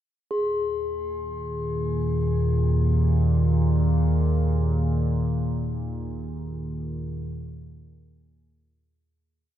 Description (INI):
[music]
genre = dark ambient drone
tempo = free time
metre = none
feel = none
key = unclear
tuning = A4 = 440 Hz
[part]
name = analog drone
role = drone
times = 1.3-9.2 s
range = Eb2 to Bb2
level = -23 LUFS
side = equal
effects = chorus
[part]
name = bronze singing bowl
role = texture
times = 0.3-9.1 s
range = Ab4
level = -31 LUFS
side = left 4 dB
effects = shimmer reverb
[sound]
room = wet plate reverb, RT60 2.6 s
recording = dreamy mix soaked in reverb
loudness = -22 LUFS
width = side -11 dB against mid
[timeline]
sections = 0.3-9.1 A section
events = fade-out 4.7-9.1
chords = 0.3 Ebsus4